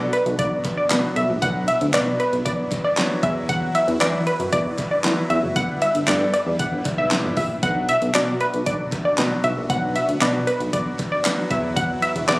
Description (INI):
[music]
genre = dance-pop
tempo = 116 BPM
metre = 4/4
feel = straight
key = B minor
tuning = A4 = 441 Hz
[part]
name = wide unison pluck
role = melody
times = 0.0-12.4 s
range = B4 to F#5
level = -22 LUFS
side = equal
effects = tape echo
[part]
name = warm concert grand piano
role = accompaniment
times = 0.0-12.4 s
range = F#3 to D5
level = -28 LUFS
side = left 1 dB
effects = sidechain pumping
[part]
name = supersaw chords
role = sustained chords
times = 0.0-12.4 s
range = E3 to B4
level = -32 LUFS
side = equal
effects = sidechain pumping
[part]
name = chorused synth bass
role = bass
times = 0.0-12.4 s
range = E1 to E3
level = -24 LUFS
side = equal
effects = sidechain pumping
[part]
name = pop drum kit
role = drums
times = 0.1-12.4 s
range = handclaps, hi-hat, kick drum, snare drum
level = -25 LUFS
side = equal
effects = overdrive
[part]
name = group handclap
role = percussion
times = 0.6-12.4 s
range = none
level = -36 LUFS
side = equal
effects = none
[sound]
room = light reverb, digital ambience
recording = recorded on a phone in the room, club reverb, compression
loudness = -18 LUFS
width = side -22 dB against mid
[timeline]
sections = 0.0-12.4 A section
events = none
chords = 0.0 Bm; 3.2 Esus2; 5.6 G6; 7.6 Bm; 11.5 Esus2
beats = 0.39 0.91 | 1.42 1.94 2.46 2.97 | 3.49 4.01 4.53 5.04 | 5.56 6.08 6.59 7.11 | 7.63 8.15 8.66 9.18 | 9.70 10.21 10.73 11.25 | 11.77 12.28